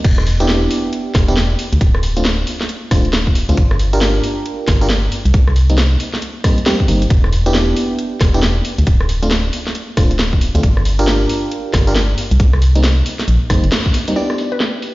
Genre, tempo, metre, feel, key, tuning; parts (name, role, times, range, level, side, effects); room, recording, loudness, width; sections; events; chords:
UK garage, two-step garage; 136 BPM; 4/4; swing 62% on 16ths; E phrygian; A4 = 438 Hz
organ-like FM bass; bass; 0.0-13.7 s; D1 to D2; -14 LUFS; equal; sidechain pumping
electronic kick drum; drums; 0.0-13.9 s; -14 LUFS; equal
garage drum kit; drums; 0.0-14.9 s; crash cymbal, hi-hat, rim click, snare drum; -20 LUFS; equal; low-pass filter on hats, low-pass filter on snare, low-pass filter on cymbals, low-pass filter on room
FM electric piano; stabs; 0.4-14.9 s; G3 to Bb4; -20 LUFS; right 1 dB; chorus, ping-pong delay
mallet-like synth pluck; melody; 14.2-14.6 s; B4 to D5; -23 LUFS; left 3 dB; chorus, phaser, ping-pong delay
light reverb; played on a big sound system in a bare room, stone room reverb, vinyl crackle, nothing above 7.5 kHz; -13 LUFS; side -19 dB against mid
0.0-14.2 A section
band accent 13.7
0.0 Em7; 1.6 Dm7; 3.6 Gm7; 5.1 Cm7; 7.1 Em7; 8.6 Dm7; 10.6 Gm7; 12.2 Cm7; 14.2 Em7